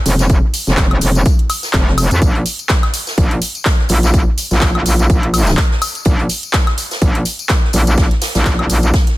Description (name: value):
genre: bass house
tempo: 125 BPM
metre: 4/4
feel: swing 56% on 16ths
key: unclear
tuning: A4 = 438 Hz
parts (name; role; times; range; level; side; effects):
- metallic wobble bass; bass; 0.1-8.9 s; F1 to F2; -13 LUFS; equal; chorus, overdrive, sidechain pumping
- house drum kit; drums; 0.1-9.2 s; handclaps, hi-hat, woodblock; -20 LUFS; equal; overdrive
- swinging big-band drum kit; drums; 0.1-9.2 s; hi-hat, snare drum; -27 LUFS; right 2 dB; high-pass filter on hats, high-pass filter on snare, high-pass filter on room
- tambourine; percussion; 0.1-9.0 s; none; -25 LUFS; left 5 dB; none
- electronic kick drum; drums; 0.3-9.0 s; none; -14 LUFS; equal; overdrive
room: studio reverb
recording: none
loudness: -12 LUFS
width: side -18 dB against mid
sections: 0.0-9.2 A section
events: none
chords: none